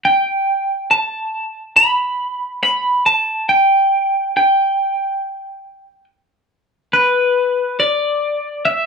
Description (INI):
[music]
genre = rock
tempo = 70 BPM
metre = 4/4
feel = straight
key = G major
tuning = A4 = 440 Hz
[part]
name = twelve-string electric guitar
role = solo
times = 0.1-8.9 s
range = B4 to B5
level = -14 LUFS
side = equal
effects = none
[sound]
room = wet studio reverb, RT60 0.7 s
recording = band playing live in one room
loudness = -14 LUFS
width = side -5 dB against mid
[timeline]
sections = 0.0-6.9 A section; 6.9-8.9 B section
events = none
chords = none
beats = | 0.06 0.92 1.78 2.64 | 3.50 4.36 5.22 6.08 | 6.94 7.79 8.65